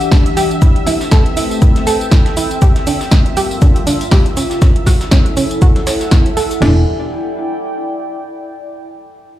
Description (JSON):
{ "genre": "deep house", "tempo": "120 BPM", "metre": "4/4", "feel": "swing 56% on 16ths", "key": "unclear", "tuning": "A4 = 439 Hz", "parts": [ { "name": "dark analog pad", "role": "sustained chords", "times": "0.0-6.9 s", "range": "E3 to A5", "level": "-26 LUFS", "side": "left 1 dB", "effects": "chorus, phaser, sidechain pumping" }, { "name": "breakbeat sampler-style drum kit", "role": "drums", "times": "0.0-6.6 s", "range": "hi-hat, shaker, snare drum", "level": "-30 LUFS", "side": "left 1 dB", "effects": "sidechain pumping on hats, high-pass filter on hats, small room ambience, high-pass filter on snare, sidechain pumping on perc, high-pass filter on perc" }, { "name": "deep house drum kit", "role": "drums", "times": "0.0-6.6 s", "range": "hi-hat, snare drum, tambourine", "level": "-20 LUFS", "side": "equal", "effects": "overdrive, small room ambience" }, { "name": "analog string pad", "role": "texture", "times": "0.0-6.6 s", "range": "E5", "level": "-28 LUFS", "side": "right 3 dB", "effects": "ensemble chorus, sidechain pumping" }, { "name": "warbly tape-like pad", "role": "texture", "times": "0.0-8.6 s", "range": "C4 to G5", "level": "-21 LUFS", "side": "left 1 dB", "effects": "chorus, built-in reverb, phaser, sidechain pumping" }, { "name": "analog pluck", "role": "arpeggios", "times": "0.1-6.9 s", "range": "C#4 to C#5", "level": "-19 LUFS", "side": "right 3 dB", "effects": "chorus, sidechain pumping, tape echo" }, { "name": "deep house drum kit", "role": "drums", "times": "0.1-6.7 s", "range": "crash cymbal, kick drum, snare drum, toms", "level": "-10 LUFS", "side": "equal", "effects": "overdrive, small room ambience" }, { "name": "deep mellow chord stab", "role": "stabs", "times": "6.6-6.8 s", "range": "E3 to E4", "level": "-19 LUFS", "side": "equal", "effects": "chorus, sidechain pumping, tape echo" }, { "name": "smooth synth bass", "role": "bass", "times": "6.6-6.9 s", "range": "E1", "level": "-13 LUFS", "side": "equal", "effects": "tube saturation, sidechain pumping" } ], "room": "little or no reverb", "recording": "played on a big sound system in a bare room, large studio reverb", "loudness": "-10 LUFS", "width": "side -13 dB against mid", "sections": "0.0-6.6 A section; 6.6-8.6 B section", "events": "filter sweep on synth arpeggio sound 0.0-6.6", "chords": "0.0 Em7; 0.6 Am7; 2.6 Gm7; 4.4 F#m7; 6.6 Em7", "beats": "0.12 | 0.62 1.12 1.62 2.12 | 2.62 3.12 3.62 4.12 | 4.62 5.12 5.62 6.12 | 6.62 7.12 7.62 8.12" }